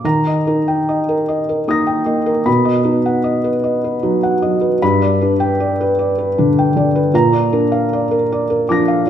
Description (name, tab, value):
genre	neoclassical minimalist piano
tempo	51 BPM (dotted quarters)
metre	6/8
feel	rubato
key	Eb major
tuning	A4 = 439 Hz
part	felt-muted upright piano	solo	0.0-9.1 s	G2 to Bb6	-13 LUFS	equal	none
room	wet recital hall reverb, RT60 1.3 s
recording	recorded in a church or concert hall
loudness	-13 LUFS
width	side -9 dB against mid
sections	0.0-9.1 A section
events	none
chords	0.0 Eb; 2.5 B; 4.8 G; 7.1 Bb